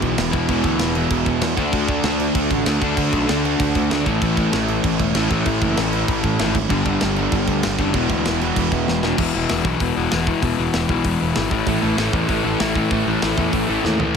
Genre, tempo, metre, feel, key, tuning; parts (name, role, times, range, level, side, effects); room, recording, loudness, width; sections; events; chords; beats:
punk rock; 193 BPM; 4/4; straight; E major from 9.2 s; A4 = 438 Hz
crunchy overdriven guitar; riff; 0.0-14.0 s; G2 to F#4; -25 LUFS; right 1 dB
distorted electric guitar; riff; 0.0-9.2, 11.7-14.2 s; E2 to D4; -24 LUFS; right 14 dB; distortion
overdriven semi-hollow guitar; riff; 0.0-14.1 s; E2 to D4; -22 LUFS; left 10 dB
fuzz picked electric bass; bass; 0.0-14.2 s; E1 to E2; -25 LUFS; right 1 dB; overdrive
tight metal drum kit; drums; 0.0-14.2 s; crash cymbal, hi-hat, kick drum, snare drum, toms; -24 LUFS; right 1 dB
light reverb; -17 LUFS; side -6 dB against mid
0.0-9.2 A section; 9.2-14.1 B section
drum fill 8.9-9.2, 13.8-14.1
0.0 E; 1.6 D; 4.1 A; 6.7 G; 7.9 E; 11.5 A
0.18 | 0.49 0.81 1.12 1.43 | 1.74 2.05 2.36 2.67 | 2.98 3.29 3.60 3.92 | 4.23 4.54 4.85 5.16 | 5.47 5.78 6.09 6.40 | 6.71 7.02 7.33 7.64 | 7.95 8.26 8.57 8.88 | 9.19 9.50 9.81 10.12 | 10.43 10.74 11.05 11.36 | 11.67 11.98 12.29 12.60 | 12.90 13.21 13.52 13.83 | 14.14